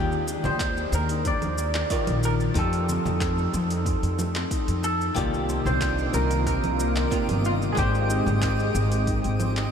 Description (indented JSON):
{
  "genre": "sunset chillout",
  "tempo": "92 BPM",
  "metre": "4/4",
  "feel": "straight",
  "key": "C minor",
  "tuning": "A4 = 440 Hz",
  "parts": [
    { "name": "clean electric guitar", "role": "melody", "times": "0.0-9.7 s", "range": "F4 to D5", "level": "-29 LUFS", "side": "equal", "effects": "wide subtle chorus, ping-pong delay" },
    { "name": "archtop guitar, miked and amplified", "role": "accompaniment", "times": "0.0-9.7 s", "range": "C3 to D5", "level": "-31 LUFS", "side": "moving between left 7 dB and right 3 dB", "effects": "auto-pan, ping-pong delay" },
    { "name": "concert harp", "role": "arpeggios", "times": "0.0-9.7 s", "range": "A3 to G4", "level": "-33 LUFS", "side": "left 1 dB", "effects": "ping-pong delay" },
    { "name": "upright bass", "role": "bass", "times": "0.0-9.6 s", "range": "G1 to F2", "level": "-26 LUFS", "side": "equal", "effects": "none" },
    { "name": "deep house drum kit", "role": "drums", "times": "0.1-9.7 s", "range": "congas, handclaps, hi-hat, shaker", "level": "-34 LUFS", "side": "right 2 dB", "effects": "none" },
    { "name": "congas", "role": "percussion", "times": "0.4-8.4 s", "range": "none", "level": "-37 LUFS", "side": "left 2 dB", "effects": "none" },
    { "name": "electronic kick drum", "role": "drums", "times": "0.6-9.2 s", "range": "none", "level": "-30 LUFS", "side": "equal", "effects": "none" },
    { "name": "lush unison pad", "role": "sustained chords", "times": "5.2-9.7 s", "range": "C3 to G5", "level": "-30 LUFS", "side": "equal", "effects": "chorus" },
    { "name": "twinkling granular texture", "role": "texture", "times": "5.6-9.7 s", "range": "Eb5 to D6", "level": "-36 LUFS", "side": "right 1 dB", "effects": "built-in reverb" }
  ],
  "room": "moderate huge ambient reverb, RT60 8.2 s",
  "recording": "dreamy mix soaked in reverb",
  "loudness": "-22 LUFS",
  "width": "side -7 dB against mid",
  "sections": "0.0-9.7 A section",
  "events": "fade-out 8.6-9.7",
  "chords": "0.0 Ebmaj9; 2.6 F9; 5.2 Cm11; 7.8 Abmaj7"
}